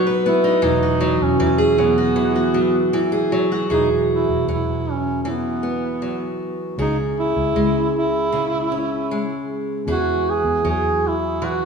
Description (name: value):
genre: acoustic pop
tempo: 78 BPM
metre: 4/4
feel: straight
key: unclear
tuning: A4 = 440 Hz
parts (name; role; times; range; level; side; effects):
- fingerpicked steel-string acoustic guitar; accompaniment; 0.0-11.7 s; C#3 to B4; -20 LUFS; equal; none
- vintage muted fingered electric bass; bass; 0.0-11.7 s; E1 to E2; -26 LUFS; right 2 dB; none
- warm duduk; melody; 0.3-11.7 s; B3 to G#4; -22 LUFS; right 2 dB; none
room: moderate concert hall reverb, RT60 2.0 s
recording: recorded in a church or concert hall, small room reverb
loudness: -17 LUFS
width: side -5 dB against mid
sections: 0.0-3.7 A section; 3.7-11.7 B section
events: none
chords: 0.0 B/F#; 0.6 Eadd9; 6.8 C#m; 9.9 Eadd9